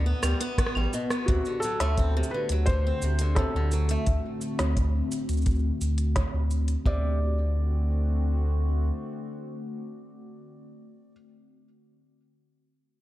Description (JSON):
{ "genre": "folktronica", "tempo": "86 BPM", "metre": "4/4", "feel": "straight", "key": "D mixolydian", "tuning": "A4 = 441 Hz", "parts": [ { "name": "warbly tape-like pad", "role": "sustained chords", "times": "0.0-10.4 s", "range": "D3 to F#4", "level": "-34 LUFS", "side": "left 1 dB", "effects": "chorus, built-in reverb" }, { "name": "picked swing-style acoustic guitar", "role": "arpeggios", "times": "0.0-7.2 s", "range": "B2 to C4", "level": "-34 LUFS", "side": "equal", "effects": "digital delay" }, { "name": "warm sub bass", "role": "bass", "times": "0.0-8.9 s", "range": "A1 to D2", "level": "-25 LUFS", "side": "equal", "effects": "none" }, { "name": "organic electronic drum kit", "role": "drums", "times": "0.2-6.8 s", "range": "cabasa, claves, hi-hat, rim click, snare drum", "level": "-33 LUFS", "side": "right 1 dB", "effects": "none" }, { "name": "kick drum", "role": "drums", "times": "0.6-7.0 s", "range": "none", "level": "-30 LUFS", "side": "equal", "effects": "none" }, { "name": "felt-muted upright piano", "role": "melody", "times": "1.3-11.1 s", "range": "F#4 to D5", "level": "-33 LUFS", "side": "left 1 dB", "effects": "digital delay" } ], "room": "light reverb, small room ambience", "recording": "dark, warm production", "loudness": "-24 LUFS", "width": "side -15 dB against mid", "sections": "0.0-1.3 A section; 1.3-6.9 B section; 6.9-9.6 C section", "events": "drum fill 0.2-1.3; band accent 1.1-1.5; filter sweep on ambient pad 1.3-6.9", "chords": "0.0 Gmaj7/D; 1.3 D7" }